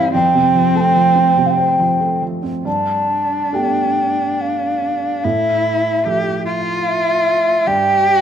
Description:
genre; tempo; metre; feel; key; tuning
celtic folk, Celtic slow air; 68-76 BPM; 3/4; rubato; unclear; A4 = 440 Hz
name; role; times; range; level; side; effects
mellow hollow baroque flute; melody; 0.0-8.2 s; E5 to A5; -16 LUFS; right 1 dB; none
warm cello; second line; 0.0-8.2 s; C4 to G4; -21 LUFS; left 3 dB; none
felt-muted upright piano; accompaniment; 0.0-8.2 s; E2 to E5; -20 LUFS; right 2 dB; none
room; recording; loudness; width
moderate recital hall reverb, RT60 1.3 s; minimal, uncompressed stereo recording; -14 LUFS; side -8 dB against mid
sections
0.0-2.7 A section; 2.7-8.2 B section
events
none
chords
0.1 F; 2.7 Gadd9; 5.2 Fmaj7/A; 7.7 N.C.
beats
| 0.14 0.95 1.79 | 2.67 3.54 4.41 | 5.24 6.06 6.87 | 7.66

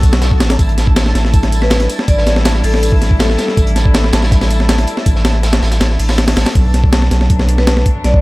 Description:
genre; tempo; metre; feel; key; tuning
drum and bass, jungle; 161 BPM; 4/4; straight; unclear; A4 = 440 Hz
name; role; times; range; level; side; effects
warm studio string section; sustained chords; 0.0-8.2 s; F#3 to F#4; -23 LUFS; left 1 dB; none
saturated sub bass; bass; 0.0-8.2 s; A1 to B1; -13 LUFS; equal; none
breakbeat sampler-style drum kit; drums; 0.0-8.2 s; hi-hat, kick drum, snare drum; -14 LUFS; equal; none
crunchy breakbeat drum kit; drums; 0.0-6.5 s; hi-hat, snare drum, tambourine; -26 LUFS; right 2 dB; high-pass filter on hats, high-pass filter on snare, high-pass filter on perc, high-pass filter on room
twinkling granular texture; texture; 0.0-6.6 s; A4 to A5; -27 LUFS; equal; built-in reverb
vibraphone with medium hard mallets; melody; 1.6-3.6, 7.6-8.2 s; A4 to D5; -20 LUFS; left 1 dB; vintage 12-bit sampler grit, dub echo
room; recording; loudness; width
little or no reverb; echo-heavy mix; -10 LUFS; side -20 dB against mid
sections
0.0-6.6 A section; 6.6-8.2 A section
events
drop 0.0-6.6, 6.6-8.2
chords
0.0 Bm7; 0.6 A7sus4; 6.6 Bm7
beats
0.22 | 0.59 0.96 1.34 1.71 | 2.08 2.45 2.83 3.20 | 3.57 3.94 4.32 4.69 | 5.06 5.43 5.81 6.18 | 6.55 6.93 7.30 7.67 | 8.04

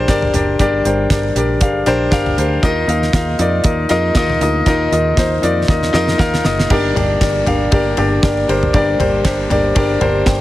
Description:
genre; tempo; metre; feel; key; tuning
piano-driven pop; 118 BPM; 4/4; swing 56% on 16ths; unclear; A4 = 444 Hz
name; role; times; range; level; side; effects
warm grand piano; accompaniment; 0.0-10.4 s; G2 to G5; -15 LUFS; left 2 dB; none
fingered electric bass; bass; 0.0-10.4 s; Gb1 to F2; -20 LUFS; right 1 dB; none
damped 70s drum kit; drums; 0.1-10.4 s; crash cymbal, hi-hat, kick drum, ride cymbal, snare drum, toms; -18 LUFS; equal; none
glass harmonica; sustained chords; 2.6-10.4 s; Bb3 to Eb5; -26 LUFS; right 3 dB; none
room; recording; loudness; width
light reverb; heavily compressed radio sound, multiband compression; -13 LUFS; side -15 dB against mid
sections
0.0-6.7 A section; 6.7-10.4 B section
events
drum fill 5.7-6.7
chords
0.0 Gm; 2.6 Ebsus2; 6.7 Gm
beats
0.09 | 0.59 1.10 1.61 2.12 | 2.63 3.14 3.65 4.16 | 4.67 5.18 5.68 6.19 | 6.70 7.21 7.72 8.23 | 8.74 9.25 9.76 10.27

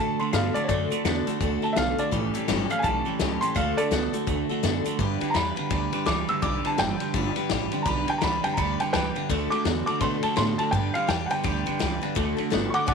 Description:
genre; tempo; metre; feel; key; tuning
rockabilly; 167 BPM; 4/4; swing 62% on 8ths; unclear; A4 = 440 Hz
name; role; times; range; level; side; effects
clear upright piano; melody; 0.0-12.9 s; A4 to E6; -27 LUFS; equal; none
picked steel-string acoustic guitar; accompaniment; 0.0-12.9 s; A2 to B4; -30 LUFS; left 13 dB; none
electric guitar at the edge of break-up; riff; 0.0-12.9 s; G2 to B3; -29 LUFS; right 16 dB; phaser
upright bass; bass; 0.0-12.9 s; F#1 to B2; -30 LUFS; equal; none
vintage drum kit; drums; 0.3-12.9 s; hi-hat, kick drum, ride cymbal, snare drum; -31 LUFS; left 6 dB; none
room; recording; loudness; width
light reverb, small room reverb; 1960s-style stereo with parts hard left and right; -23 LUFS; side -5 dB against mid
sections
0.0-5.0 A section; 5.0-12.9 B section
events
upright piano solo 5.0-12.9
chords
0.0 D; 2.1 A7; 3.6 D; 5.0 G; 9.3 D; 10.7 G; 12.2 D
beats
0.33 | 0.69 1.05 1.41 1.76 | 2.12 2.48 2.84 3.20 | 3.56 3.92 4.27 4.63 | 4.99 5.35 5.71 6.07 | 6.43 6.78 7.14 7.50 | 7.86 8.22 8.58 8.94 | 9.29 9.65 10.01 10.37 | 10.73 11.09 11.45 11.81 | 12.16 12.52 12.88

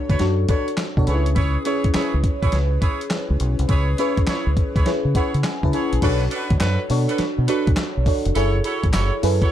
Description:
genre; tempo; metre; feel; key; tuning
R&B, new jack swing; 103 BPM; 4/4; swing 66% on 16ths; B dorian; A4 = 444 Hz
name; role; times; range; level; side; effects
FM electric piano with soft pad layer; accompaniment; 0.0-9.5 s; C#4 to A5; -24 LUFS; left 1 dB; chorus, phaser
clear horn section; stabs; 0.1-9.5 s; D4 to C#5; -28 LUFS; right 3 dB; none
deep dub fingered electric bass; bass; 0.1-9.4 s; E#1 to C#3; -20 LUFS; equal; none
dusty soul sampler-style drum kit; drums; 0.1-9.5 s; crash cymbal, handclaps, hi-hat, kick drum, snare drum, tambourine; -22 LUFS; equal; none
group handclap; percussion; 6.6-9.1 s; none; -38 LUFS; left 3 dB; none
room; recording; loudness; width
little or no reverb; dark, warm production; -18 LUFS; side -11 dB against mid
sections
0.0-6.0 A section; 6.0-9.5 B section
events
FM electric piano fill 4.9-6.0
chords
0.0 Bm9; 1.1 C#m7; 6.0 Bm7; 8.4 F#m7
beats
0.20 0.78 | 1.36 1.95 2.53 3.11 | 3.69 4.28 4.86 5.44 | 6.02 6.61 7.19 7.77 | 8.35 8.94

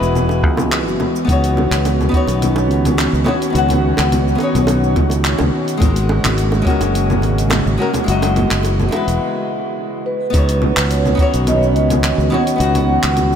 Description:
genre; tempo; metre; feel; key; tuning
sunset chillout; 106 BPM; 4/4; straight; C# dorian; A4 = 445 Hz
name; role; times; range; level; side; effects
flamenco guitar; accompaniment; 0.0-13.4 s; G#3 to F#5; -20 LUFS; left 2 dB; auto-pan, diffuse ambient delay
airy breathy pad; sustained chords; 0.0-13.4 s; C#3 to F#4; -21 LUFS; equal; chorus
fingered electric bass; bass; 0.0-13.4 s; E1 to C#2; -17 LUFS; equal; none
deep house drum kit; drums; 0.0-13.4 s; congas, handclaps, hi-hat, shaker; -22 LUFS; left 1 dB; overdrive
bongos; percussion; 0.3-9.0 s; none; -28 LUFS; right 3 dB; none
electronic kick drum; drums; 0.4-6.8, 10.3-11.3 s; none; -16 LUFS; equal; overdrive
vibraphone with soft mallets; melody; 10.1-13.4 s; B4 to F#5; -20 LUFS; right 2 dB; diffuse ambient delay
room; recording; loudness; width
wet cathedral reverb, RT60 6.1 s; dreamy mix soaked in reverb; -13 LUFS; side -8 dB against mid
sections
0.0-10.3 A section; 10.3-13.4 A section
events
break 9.2-10.3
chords
0.0 F#9sus4; 1.3 C#9sus4; 5.8 G#9sus4; 8.1 F#9sus4; 10.3 C#9sus4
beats
0.15 0.72 | 1.28 1.85 2.41 2.98 | 3.55 4.11 4.68 5.25 | 5.81 6.38 6.94 7.51 | 8.07 8.64 9.21 9.77 | 10.34 10.90 11.47 12.04 | 12.60 13.17

